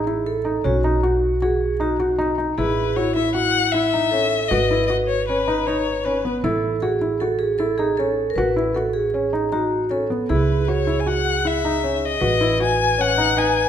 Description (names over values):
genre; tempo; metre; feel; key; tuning
contemporary instrumental, chamber music in an uneven meter; 156 BPM; 5/4; straight; A lydian; A4 = 439 Hz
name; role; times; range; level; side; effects
vibraphone with medium hard mallets; second line; 0.0-13.7 s; E4 to B4; -23 LUFS; right 1 dB; none
felt-muted upright piano; arpeggios; 0.0-13.7 s; B3 to F#4; -24 LUFS; left 1 dB; none
upright bass; bass; 0.0-13.7 s; G#1 to C#2; -26 LUFS; right 2 dB; none
warm violin; melody; 2.6-6.3, 10.3-13.7 s; B4 to G#5; -21 LUFS; left 6 dB; none
room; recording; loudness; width
wet recital hall reverb, RT60 1.4 s; none; -18 LUFS; side -9 dB against mid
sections
0.0-2.6 A section; 2.6-13.7 B section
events
none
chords
0.0 Amaj7(no3); 0.6 B; 2.6 Amaj7; 4.5 G#m; 6.4 Amaj7; 8.4 B/A; 10.3 C#m7; 12.2 B/A